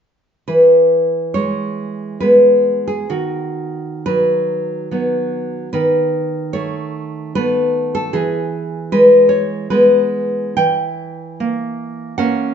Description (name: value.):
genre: romantic piece for solo classical guitar.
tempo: 61-78 BPM.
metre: 3/4.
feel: rubato.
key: E major.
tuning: A4 = 440 Hz.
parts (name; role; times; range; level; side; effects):
nylon-string guitar; solo; 0.5-12.5 s; D#3 to G5; -14 LUFS; equal; none.
room: moderate stone room reverb, RT60 1.1 s.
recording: band playing live in one room, nothing above 7.5 kHz.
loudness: -13 LUFS.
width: side -8 dB against mid.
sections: 0.5-12.5 A section.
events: none.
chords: 0.5 E; 3.1 B/D#; 5.7 B7/D#; 8.1 E; 10.6 Edim7.